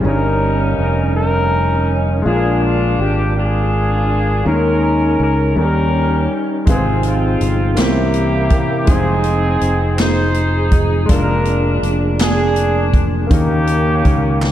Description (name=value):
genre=slow gospel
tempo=54 BPM (dotted quarters)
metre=6/8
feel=straight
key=unclear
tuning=A4 = 440 Hz
part: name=clear grand piano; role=accompaniment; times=0.0-14.5 s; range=G2 to C5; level=-22 LUFS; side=left 2 dB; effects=none
part: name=fingered electric bass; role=bass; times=0.0-14.5 s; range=F1 to Eb2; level=-17 LUFS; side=equal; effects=none
part: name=mellow horn section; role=melody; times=0.1-14.5 s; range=Bb3 to C5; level=-18 LUFS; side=equal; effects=slapback echo, tape echo
part: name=percussive tonewheel organ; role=sustained chords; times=0.1-14.5 s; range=C3 to G5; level=-23 LUFS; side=right 2 dB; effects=chorus vibrato, slow rotary speaker
part: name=swinging big-band drum kit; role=drums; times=6.7-14.5 s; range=hi-hat, kick drum, snare drum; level=-17 LUFS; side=equal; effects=none
part: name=group handclap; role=percussion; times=7.8-14.5 s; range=none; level=-30 LUFS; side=right 4 dB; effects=none
room=moderate lush hall reverb, RT60 2.2 s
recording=big arena sound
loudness=-13 LUFS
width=side -12 dB against mid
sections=0.0-14.5 A section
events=none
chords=0.0 Eb7; 2.3 Bb7; 4.5 Eb7sus4; 5.6 Eb7; 6.7 Ab6; 7.8 C7b9; 8.9 Fm7; 11.1 Bb7/F; 13.3 Eb7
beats=| 0.05 1.15 | 2.25 3.36 | 4.46 5.56 | 6.67 7.77 | 8.88 9.98 | 11.09 12.20 | 13.31 14.42